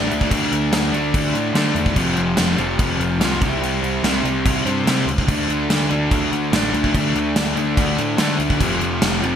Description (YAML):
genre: hard rock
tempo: 145 BPM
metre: 4/4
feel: straight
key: D minor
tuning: A4 = 441 Hz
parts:
  - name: overdriven electric guitar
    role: riff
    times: 0.0-9.4 s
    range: F2 to D4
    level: -20 LUFS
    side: equal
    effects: none
  - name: fuzz picked electric bass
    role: bass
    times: 0.0-9.4 s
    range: F1 to D3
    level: -24 LUFS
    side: equal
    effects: overdrive
  - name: gated 80s drum kit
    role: drums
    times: 0.1-9.3 s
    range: crash cymbal, kick drum, snare drum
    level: -20 LUFS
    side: equal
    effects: gated reverb
room: light reverb, small room ambience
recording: bright 1980s-style digital production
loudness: -16 LUFS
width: side -8 dB against mid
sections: 0.0-9.4 A section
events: none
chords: 0.0 D5; 2.0 F5; 3.4 C5; 5.3 D5; 8.6 F5